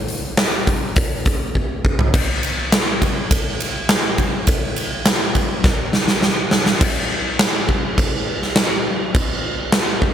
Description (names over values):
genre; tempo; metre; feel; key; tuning
rock; 103 BPM; 4/4; straight; none; none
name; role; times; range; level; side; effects
huge arena drum kit; drums; 0.1-10.1 s; crash cymbal, hi-hat, kick drum, ride cymbal, snare drum, toms; -16 LUFS; equal; none
room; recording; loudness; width
light reverb; none; -16 LUFS; side -9 dB against mid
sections
0.0-2.1 A section; 2.1-6.8 B section; 6.8-10.1 C section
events
drum fill 1.6-2.1, 5.7-6.8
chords
none